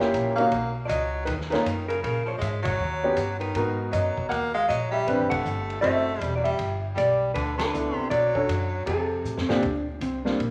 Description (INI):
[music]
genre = jazz, small-group swing and bop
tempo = 158 BPM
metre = 4/4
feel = swing 64% on 8ths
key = unclear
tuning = A4 = 440 Hz
[part]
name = hollow-body jazz guitar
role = melody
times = 0.0-10.5 s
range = Bb3 to F#5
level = -30 LUFS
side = equal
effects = none
[part]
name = breathy baritone saxophone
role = second line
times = 0.0-9.4 s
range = A#2 to A#3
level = -33 LUFS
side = equal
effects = none
[part]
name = warm baby grand piano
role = accompaniment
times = 0.0-10.4 s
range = A#2 to B#4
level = -29 LUFS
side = equal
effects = none
[part]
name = upright bass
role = bass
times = 0.0-10.5 s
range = E1 to A#2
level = -34 LUFS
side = equal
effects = none
[part]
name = vintage drum kit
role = drums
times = 0.0-10.5 s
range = hi-hat, kick drum, ride cymbal, snare drum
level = -39 LUFS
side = equal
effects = none
[sound]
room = wet large studio reverb, RT60 0.9 s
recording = vinyl crackle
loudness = -26 LUFS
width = mono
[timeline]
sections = 0.0-9.6 A section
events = band accent 2.6, 5.3, 7.5; drum fill 9.2-9.6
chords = 0.0 F#7b9; 0.5 Bmaj9; 2.0 G#9sus4; 2.8 D#7alt; 3.6 G#m9; 5.1 Am11; 5.8 Esus4; 6.6 G6; 8.1 Bm7; 8.9 F7; 9.6 Bb6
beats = 0.14 | 0.52 0.90 1.28 1.66 | 2.04 2.42 2.80 3.18 | 3.56 3.94 4.32 4.70 | 5.08 5.45 5.83 6.21 | 6.59 6.97 7.35 7.73 | 8.11 8.49 8.87 9.25 | 9.62 10.01 10.38